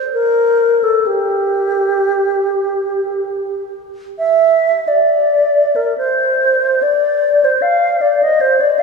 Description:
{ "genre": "classical, free, expressive piece for unaccompanied alto flute", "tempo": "48-78 BPM", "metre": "3/4", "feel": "rubato", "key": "G dorian", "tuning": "A4 = 440 Hz", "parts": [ { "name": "alto flute", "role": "solo", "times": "0.1-8.8 s", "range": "G4 to F5", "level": "-12 LUFS", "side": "equal", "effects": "none" } ], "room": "wet cathedral reverb, RT60 5.1 s", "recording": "heard from further back in the room, studio reverb", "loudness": "-12 LUFS", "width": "side -4 dB against mid", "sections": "0.0-8.8 A section", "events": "none", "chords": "none", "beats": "0.14 | 1.07 2.08 3.08 | 4.18 5.09 5.96 | 6.81 7.62 8.41" }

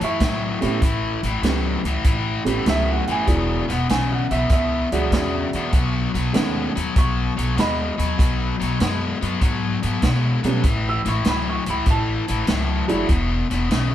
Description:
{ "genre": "electric blues shuffle", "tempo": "98 BPM", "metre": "4/4", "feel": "swing 68% on 8ths", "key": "unclear", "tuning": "A4 = 439 Hz", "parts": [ { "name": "warm upright piano", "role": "accompaniment", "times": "0.0-13.1 s", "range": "D#3 to E6", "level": "-25 LUFS", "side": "right 3 dB", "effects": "none" }, { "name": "biting overdriven guitar", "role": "riff", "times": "0.0-13.9 s", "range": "E2 to G#3", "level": "-24 LUFS", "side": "left 4 dB", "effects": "none" }, { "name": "upright bass", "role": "bass", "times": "0.0-13.9 s", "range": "E1 to B2", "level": "-24 LUFS", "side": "equal", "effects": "none" }, { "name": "vintage drum kit", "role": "drums", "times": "0.0-13.9 s", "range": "hi-hat, kick drum, snare drum", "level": "-22 LUFS", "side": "equal", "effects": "none" } ], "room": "light reverb", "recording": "band playing live in one room", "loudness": "-18 LUFS", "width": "side -11 dB against mid", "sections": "0.0-13.9 A section", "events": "none", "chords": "0.0 A9; 3.3 E9; 5.7 Badd9; 10.6 A; 13.1 E5", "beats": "0.21 | 0.82 1.43 2.05 2.66 | 3.27 3.89 4.50 5.11 | 5.73 6.34 6.95 7.57 | 8.18 8.80 9.41 10.02 | 10.64 11.25 11.87 12.48 | 13.10 13.71" }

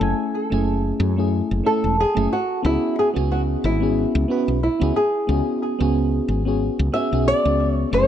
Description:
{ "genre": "sunset chillout", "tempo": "91 BPM", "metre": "4/4", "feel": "swing 56% on 16ths", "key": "unclear", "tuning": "A4 = 440 Hz", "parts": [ { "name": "flamenco guitar", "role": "melody", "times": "0.0-8.1 s", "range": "E4 to E5", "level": "-22 LUFS", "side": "equal", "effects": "vintage 12-bit sampler grit, digital delay" }, { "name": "mellow FM electric piano", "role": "accompaniment", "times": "0.0-8.1 s", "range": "A3 to G#5", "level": "-23 LUFS", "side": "moving between left 6 dB and right 4 dB", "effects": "chorus, auto-pan, low-pass filter, ping-pong delay" }, { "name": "woody fretless electric bass", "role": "bass", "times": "0.0-8.0 s", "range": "E1 to F#2", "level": "-21 LUFS", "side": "equal", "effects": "none" } ], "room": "light reverb, small room ambience", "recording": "none", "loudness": "-18 LUFS", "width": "side -10 dB against mid", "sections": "0.0-8.1 A section", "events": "none", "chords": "0.0 F#m7; 2.7 C#7sus4", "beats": "| 0.01 0.67 1.33 1.99 | 2.65 3.31 3.97 4.63 | 5.29 5.95 6.61 7.27 | 7.93" }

